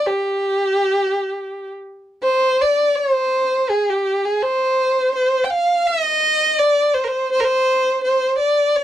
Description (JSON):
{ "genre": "arabic", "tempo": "83 BPM", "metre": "4/4", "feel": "straight", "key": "unclear", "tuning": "A4 = 441 Hz", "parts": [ { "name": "rich violin", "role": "solo", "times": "0.0-8.8 s", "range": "G4 to G5", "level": "-16 LUFS", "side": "equal", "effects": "none" } ], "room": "little or no reverb", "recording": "dry, close 1970s-style studio recording", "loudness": "-16 LUFS", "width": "side -12 dB against mid", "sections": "0.0-3.0 A section; 3.0-8.8 B section", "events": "none", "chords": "none" }